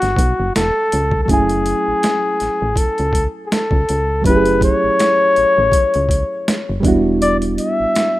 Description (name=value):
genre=R&B, neo-soul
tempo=81 BPM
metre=4/4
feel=swing 55% on 16ths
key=F# minor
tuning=A4 = 441 Hz
part: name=mellow flugelhorn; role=melody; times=0.0-8.2 s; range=F#4 to E5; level=-16 LUFS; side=left 2 dB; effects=slapback echo
part: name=reed electric piano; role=accompaniment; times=0.0-8.2 s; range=F#3 to G#5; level=-20 LUFS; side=right 3 dB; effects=none
part: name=solid FM bass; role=bass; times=0.0-7.9 s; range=E1 to C#2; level=-21 LUFS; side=equal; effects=none
part: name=boom bap sampler-style drum kit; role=drums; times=0.0-8.1 s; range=hi-hat, kick drum, snare drum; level=-19 LUFS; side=equal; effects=overdrive
room=digital ambience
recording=rough home demo mix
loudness=-13 LUFS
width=side -16 dB against mid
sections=0.0-1.3 A section; 1.3-8.2 B section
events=none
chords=0.0 Em9; 1.3 F#m9; 6.8 Em9